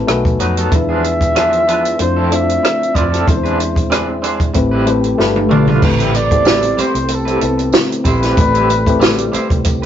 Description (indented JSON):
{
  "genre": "lush 1970s-style soul",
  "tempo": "94 BPM",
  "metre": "4/4",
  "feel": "swing 54% on 16ths",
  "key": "unclear",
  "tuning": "A4 = 440 Hz",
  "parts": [
    { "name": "bright reed electric piano", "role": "accompaniment", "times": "0.0-9.9 s", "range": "G#3 to Ab5", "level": "-19 LUFS", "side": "left 4 dB", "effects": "none" },
    { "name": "vintage muted fingered electric bass", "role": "bass", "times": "0.0-9.9 s", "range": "G1 to F2", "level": "-20 LUFS", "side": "equal", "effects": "none" },
    { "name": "electric guitar through a small old amp", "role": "riff", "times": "0.1-9.9 s", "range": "F3 to D5", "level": "-21 LUFS", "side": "right 2 dB", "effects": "tremolo" },
    { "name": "compact cocktail drum kit", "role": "drums", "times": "0.1-9.9 s", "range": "crash cymbal, hi-hat, kick drum, rim click, snare drum, toms", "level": "-15 LUFS", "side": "right 1 dB", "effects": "none" },
    { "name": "warm flugelhorn", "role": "melody", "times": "0.7-9.3 s", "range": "A4 to E5", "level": "-17 LUFS", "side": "equal", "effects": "none" },
    { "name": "tonewheel organ", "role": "sustained chords", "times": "0.7-9.9 s", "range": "E3 to B4", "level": "-22 LUFS", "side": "right 1 dB", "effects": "overdrive, slow rotary speaker" },
    { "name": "tambourine", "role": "percussion", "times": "5.8-9.8 s", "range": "none", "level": "-33 LUFS", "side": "right 6 dB", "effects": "none" }
  ],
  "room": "moderate studio reverb, RT60 0.5 s",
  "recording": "rough rehearsal-room recording, nothing above 7.6 kHz",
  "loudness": "-12 LUFS",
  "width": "side -10 dB against mid",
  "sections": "0.0-5.8 A section; 5.8-9.9 B section",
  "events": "reed electric piano fill 0.0-0.7; drum fill 5.2-5.8",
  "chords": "0.1 B7; 0.7 E7b9; 2.0 Dm9/F; 3.3 E7b13; 4.5 Am9; 5.2 G9; 5.8 Am9"
}